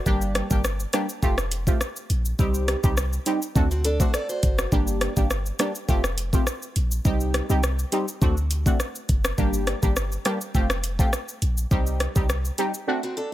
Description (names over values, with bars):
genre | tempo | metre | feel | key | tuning
dancehall | 103 BPM | 4/4 | straight | G minor | A4 = 440 Hz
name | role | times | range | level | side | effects
picked acoustic archtop guitar | arpeggios | 0.0, 3.7-4.7, 13.0-13.3 s | C4 to D5 | -28 LUFS | right 1 dB | none
synth brass stab | accompaniment | 0.1-13.0 s | G3 to G4 | -27 LUFS | right 1 dB | chorus, phaser
clean 808-style bass | bass | 0.1-12.5 s | F1 to D2 | -25 LUFS | equal | none
afro-pop drum kit | drums | 0.1-12.9 s | hi-hat, kick drum, rim click, shaker | -24 LUFS | equal | none
room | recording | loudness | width
little or no reverb | none | -21 LUFS | side -14 dB against mid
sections
0.0-13.3 A section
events
none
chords
0.1 Gm; 1.2 Fadd9; 2.4 Cm; 3.6 D7; 4.7 Gm; 5.9 Fadd9; 7.1 Cm; 8.2 D7; 9.4 Gm; 10.5 Fadd9; 11.7 Cm